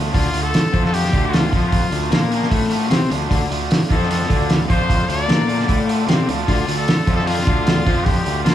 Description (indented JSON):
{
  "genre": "indie rock",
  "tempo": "151 BPM",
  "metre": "4/4",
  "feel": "straight",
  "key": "D minor",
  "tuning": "A4 = 439 Hz",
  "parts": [
    { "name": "crunchy overdriven guitar", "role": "riff", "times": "0.0-8.5 s", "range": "D3 to C4", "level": "-23 LUFS", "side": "left 6 dB", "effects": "none" },
    { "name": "raw garage guitar", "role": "riff", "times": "0.0-8.5 s", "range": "D3 to F4", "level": "-26 LUFS", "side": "right 6 dB", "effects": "overdrive" },
    { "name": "fuzz fingered electric bass", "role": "bass", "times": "0.0-8.5 s", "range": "D2 to C3", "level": "-24 LUFS", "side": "right 1 dB", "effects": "overdrive" },
    { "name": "bright trumpet", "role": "melody", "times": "0.1-8.5 s", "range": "F4 to D5", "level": "-24 LUFS", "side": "left 2 dB", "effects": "none" },
    { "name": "cloth-damped thuddy drum kit", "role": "drums", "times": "0.1-8.5 s", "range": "hi-hat, kick drum, snare drum", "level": "-18 LUFS", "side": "right 1 dB", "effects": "none" },
    { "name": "string machine, violas", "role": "sustained chords", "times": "3.3-8.5 s", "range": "A4 to D6", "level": "-32 LUFS", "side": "equal", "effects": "none" }
  ],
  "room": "light reverb",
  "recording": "band playing live in one room",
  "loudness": "-15 LUFS",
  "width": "side -11 dB against mid",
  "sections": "0.0-8.5 A section",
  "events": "none",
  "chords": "0.0 Dm"
}